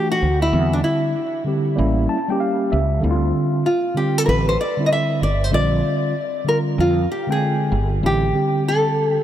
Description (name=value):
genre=hip hop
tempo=96 BPM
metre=4/4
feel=swing 64% on 16ths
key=unclear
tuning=A4 = 440 Hz
part: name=nylon-string guitar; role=melody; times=0.0-9.2 s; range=D4 to E5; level=-21 LUFS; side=equal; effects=analog delay
part: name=mellow tine electric piano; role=accompaniment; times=0.0-9.2 s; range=D3 to A5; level=-21 LUFS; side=equal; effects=fast stereo tremolo
part: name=fretless electric bass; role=bass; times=0.2-8.3 s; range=G1 to F2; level=-20 LUFS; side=right 1 dB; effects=analog chorus
room=moderate huge ambient reverb, RT60 4.7 s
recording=dreamy mix soaked in reverb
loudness=-17 LUFS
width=side -11 dB against mid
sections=0.0-8.0 A section; 8.0-9.2 B section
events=nylon-string guitar solo 0.0-8.0; tine electric piano fill 1.8-3.0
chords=0.0 C6 (rootless); 0.5 Cadd9/E; 1.8 A7b9; 3.0 Dm9; 5.5 Bb13 (rootless); 8.0 Am7